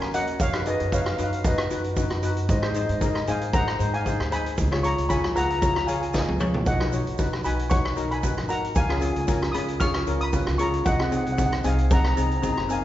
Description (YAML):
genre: calypso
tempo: 115 BPM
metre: 4/4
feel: swing 54% on 16ths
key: unclear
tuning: A4 = 440 Hz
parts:
  - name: steel pan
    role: melody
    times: 0.0-12.8 s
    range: B4 to E#6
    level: -28 LUFS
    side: left 1 dB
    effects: none
  - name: steel pan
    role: accompaniment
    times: 0.0-12.8 s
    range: B#3 to D#5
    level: -28 LUFS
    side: left 2 dB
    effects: none
  - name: upright bass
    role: bass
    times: 0.0-12.8 s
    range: F#1 to G#2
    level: -27 LUFS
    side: equal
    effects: none
  - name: street-band drum kit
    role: drums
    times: 0.0-12.8 s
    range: hi-hat, kick drum, rim click, snare drum, toms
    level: -27 LUFS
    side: equal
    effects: none
  - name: egg shaker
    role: percussion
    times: 0.1-12.8 s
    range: none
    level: -45 LUFS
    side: right 8 dB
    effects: none
room: wet recital hall reverb, RT60 1.8 s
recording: recorded in a church or concert hall, nothing above 7.7 kHz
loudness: -22 LUFS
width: side -13 dB against mid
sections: 0.0-12.8 A section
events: drum fill 6.1-6.7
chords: 0.4 B/F#; 2.5 G#; 4.6 C#; 6.7 B; 8.8 C#; 10.9 G#7/B#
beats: | 0.40 0.93 1.45 1.97 | 2.49 3.01 3.53 4.05 | 4.58 5.10 5.62 6.14 | 6.67 7.19 7.71 8.24 | 8.76 9.29 9.81 10.34 | 10.86 11.39 11.91 12.44